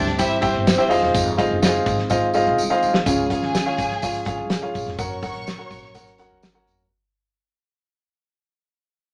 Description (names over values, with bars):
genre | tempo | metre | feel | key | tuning
uptempo 1960s-style soul | 125 BPM | 4/4 | straight | Db major | A4 = 440 Hz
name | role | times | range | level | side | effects
warm studio string section | second line | 0.0-6.6 s | C4 to Db6 | -30 LUFS | equal | none
warm upright piano | accompaniment | 0.0-6.8 s | Db3 to G5 | -24 LUFS | equal | none
mellow tonewheel organ | sustained chords | 0.0-6.9 s | Eb3 to Bb4 | -31 LUFS | equal | slow rotary speaker
upright bass | bass | 0.0-6.9 s | Fb1 to Eb2 | -33 LUFS | equal | none
natural country drum kit | drums | 0.1-6.8 s | hi-hat, kick drum, ride cymbal, snare drum | -27 LUFS | equal | none
tambourine | percussion | 0.2-6.8 s | none | -36 LUFS | equal | none
room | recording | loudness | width
wet studio reverb, RT60 0.5 s | none | -21 LUFS | mono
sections
0.0-3.1 A section; 3.1-6.9 B section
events
drum fill 2.1-3.1; fade-out 3.1-6.9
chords
0.0 C; 0.9 Fm7; 3.1 Db; 5.0 Gb